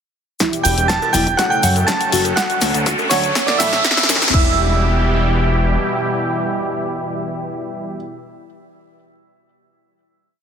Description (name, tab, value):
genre	progressive house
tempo	122 BPM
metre	4/4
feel	straight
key	E dorian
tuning	A4 = 440 Hz
part	filtered supersaw swell	sustained chords	0.4-7.9 s	B2 to A4	-22 LUFS	equal	sidechain pumping
part	soft round pluck	arpeggios	0.4-4.6 s	C#4 to G5	-24 LUFS	left 2 dB	lush chorus, sidechain pumping, ping-pong delay
part	house drum kit	drums	0.4-4.5 s	crash cymbal, kick drum	-22 LUFS	equal	high-pass filter on kick, high-pass filter on cymbals
part	house drum kit	drums	0.4-4.4 s	hi-hat, snare drum	-21 LUFS	left 2 dB	none
part	egg shaker	percussion	0.4-4.3 s	none	-27 LUFS	left 4 dB	none
part	riser	sound effects	2.0-4.3 s	none	-23 LUFS	equal	none
part	clear grand piano	melody	0.6-7.9 s	C#5 to A5	-23 LUFS	right 2 dB	dub echo
part	soft synth bell	second line	0.6-7.9 s	C#6 to A6	-23 LUFS	right 5 dB	chorus, sidechain pumping, ping-pong delay
part	fat analog bass	bass	0.7-5.8 s	E1 to A2	-19 LUFS	equal	sidechain pumping
part	cowbell and congas	percussion	1.0-4.2 s	none	-29 LUFS	right 2 dB	sidechain pumping on perc
room	light reverb, digital ambience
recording	dense, heavily limited modern master, high-pass filter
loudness	-14 LUFS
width	side -7 dB against mid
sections	0.4-4.3 build; 4.3-8.3 final chord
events	build-up 0.4-4.3; drum fill 0.4-4.3; filter sweep 0.4-4.3; riser 2.0-4.3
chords	0.4 Em; 1.4 F#m; 2.4 D; 3.4 A; 4.3 Em